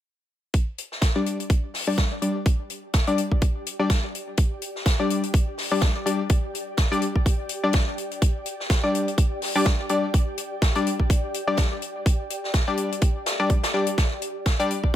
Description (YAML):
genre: bass house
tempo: 125 BPM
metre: 4/4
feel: swing 57% on 16ths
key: unclear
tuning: A4 = 440 Hz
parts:
  - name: electronic kick drum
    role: drums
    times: 0.5-15.0 s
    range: none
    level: -21 LUFS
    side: right 1 dB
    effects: none
  - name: swinging big-band drum kit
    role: drums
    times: 0.5-14.8 s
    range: hi-hat, snare drum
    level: -29 LUFS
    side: left 2 dB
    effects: sidechain pumping on hats, high-pass filter on hats, high-pass filter on snare, high-pass filter on room
  - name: ethereal airy pad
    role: texture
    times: 2.6-15.0 s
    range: G4 to G5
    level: -35 LUFS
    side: equal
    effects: ensemble chorus, built-in reverb, sidechain pumping
  - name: band-passed chord stab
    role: stabs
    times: 1.2-14.7 s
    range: G3 to D5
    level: -25 LUFS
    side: left 2 dB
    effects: chorus, sidechain pumping, tape echo
room: light reverb, small room ambience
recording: none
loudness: -21 LUFS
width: side -12 dB against mid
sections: 0.5-15.0 A section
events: fade-in on ambient pad 0.5-15.0; filter sweep on synth stab 0.5-15.0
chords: 0.5 G5